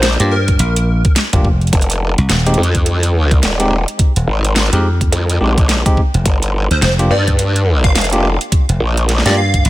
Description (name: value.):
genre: glitch hop.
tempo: 106 BPM.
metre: 4/4.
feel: swing 60% on 16ths.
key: F dorian.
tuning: A4 = 439 Hz.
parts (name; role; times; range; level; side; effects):
plucky unison lead; melody; 0.0-1.1, 6.7-9.7 s; Bb4 to F5; -20 LUFS; equal; ensemble chorus, cassette tape, digital delay.
growl bass; bass; 0.0-9.2 s; Eb1 to G2; -14 LUFS; equal; chorus.
dubstep drum kit; drums; 0.0-9.7 s; hi-hat, rim click, snare drum; -19 LUFS; right 1 dB; none.
bell-like tine electric piano; stabs; 0.2-9.4 s; Ab3 to G4; -21 LUFS; equal; sidechain pumping, digital delay.
dry thumbed slap bass; bass; 0.2-9.7 s; Eb1 to G2; -14 LUFS; equal; none.
electronic kick drum; drums; 0.5-9.6 s; none; -13 LUFS; equal; none.
room: little or no reverb.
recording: none.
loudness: -11 LUFS.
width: side -16 dB against mid.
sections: 0.0-9.7 A section.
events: none.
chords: 0.0 Gm7; 1.7 Fm9; 6.3 Gm7.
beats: 0.03 0.59 1.16 | 1.73 2.29 2.86 3.43 | 3.99 4.56 5.12 5.69 | 6.26 6.82 7.39 7.95 | 8.52 9.09 9.65.